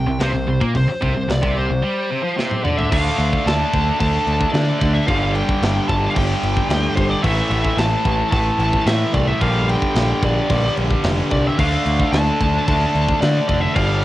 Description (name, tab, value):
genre	heavy metal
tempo	111 BPM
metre	4/4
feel	straight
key	unclear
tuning	A4 = 440 Hz
part	high-gain lead guitar	melody	0.0-14.0 s	C5 to A5	-22 LUFS	equal	distortion, cassette tape, analog delay
part	heavy high-gain guitar	riff	0.0-14.0 s	G2 to D4	-24 LUFS	left 6 dB	distortion, cassette tape
part	tight distorted guitar	riff	0.0-14.0 s	G2 to D4	-24 LUFS	right 6 dB	distortion, cassette tape
part	growling picked electric bass	bass	0.0-14.0 s	F1 to D3	-20 LUFS	equal	overdrive
part	tight metal drum kit	drums	0.2-14.0 s	crash cymbal, hi-hat, kick drum, snare drum, toms	-23 LUFS	equal	cassette tape
room	little or no reverb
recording	home recording on cassette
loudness	-16 LUFS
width	side -15 dB against mid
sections	0.0-2.9 A section; 2.9-14.0 B section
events	drum fill 2.4-2.9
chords	0.0 C5; 2.9 Dm; 5.1 G5; 7.2 A5; 9.4 Gm/Bb; 11.6 Dm